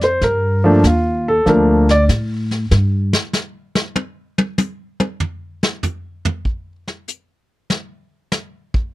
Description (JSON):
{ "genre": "jazz piano trio", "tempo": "96 BPM", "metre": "4/4", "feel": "swing 68% on 8ths", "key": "G minor", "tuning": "A4 = 440 Hz", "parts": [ { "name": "warm grand piano", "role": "melody", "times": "0.0-2.0 s", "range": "F3 to D5", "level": "-14 LUFS", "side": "equal", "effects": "none" }, { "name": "upright bass", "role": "bass", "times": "0.0-3.1 s", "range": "D2 to A2", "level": "-16 LUFS", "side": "equal", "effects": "none" }, { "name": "vintage brush drum kit", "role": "drums", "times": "0.0-8.8 s", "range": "brushed snare drum, hi-hat, kick drum, snare drum, toms", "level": "-19 LUFS", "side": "equal", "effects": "none" } ], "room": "little or no reverb", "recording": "dry, close 1970s-style studio recording", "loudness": "-16 LUFS", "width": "side -18 dB against mid", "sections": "0.0-8.9 A section", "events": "grand piano solo 0.0-8.9; drum solo 2.7-8.9", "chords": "0.2 Gm9; 2.7 N.C." }